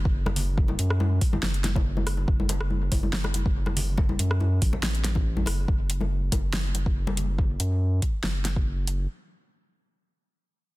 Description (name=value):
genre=deep dubstep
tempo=141 BPM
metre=4/4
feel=swing 54% on 16ths, half-time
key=F# minor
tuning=A4 = 441 Hz
part: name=saturated sub bass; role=bass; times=0.0-9.1 s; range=F#1 to F#2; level=-26 LUFS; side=equal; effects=none
part: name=electronic kick drum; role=drums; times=0.1-8.6 s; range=none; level=-25 LUFS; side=equal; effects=none
part: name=deep house drum kit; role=drums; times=0.3-9.0 s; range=hi-hat, rim click, snare drum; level=-32 LUFS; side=equal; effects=none
part: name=congas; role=percussion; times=0.3-7.3 s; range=none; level=-33 LUFS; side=left 2 dB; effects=dub echo
room=digital ambience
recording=dense, heavily limited modern master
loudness=-23 LUFS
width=side -19 dB against mid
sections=0.0-5.7 A section; 5.7-9.1 B section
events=drop 0.0-5.7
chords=none